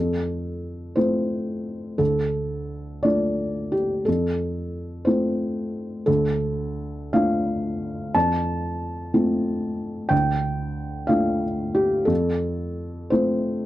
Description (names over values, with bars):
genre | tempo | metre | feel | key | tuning
neoclassical minimalist piano | 59 BPM (dotted quarters) | 6/8 | uneven beats, rubato | F major | A4 = 435 Hz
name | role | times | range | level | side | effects
felt-muted upright piano | solo | 0.0-13.7 s | D2 to A5 | -22 LUFS | equal | none
room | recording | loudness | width
light reverb | dry, close 1970s-style studio recording | -22 LUFS | side -15 dB against mid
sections
0.0-13.7 A section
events
none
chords
0.0 F; 2.0 Dm; 4.1 F; 6.1 Dm; 8.1 F; 10.1 Dm; 12.1 F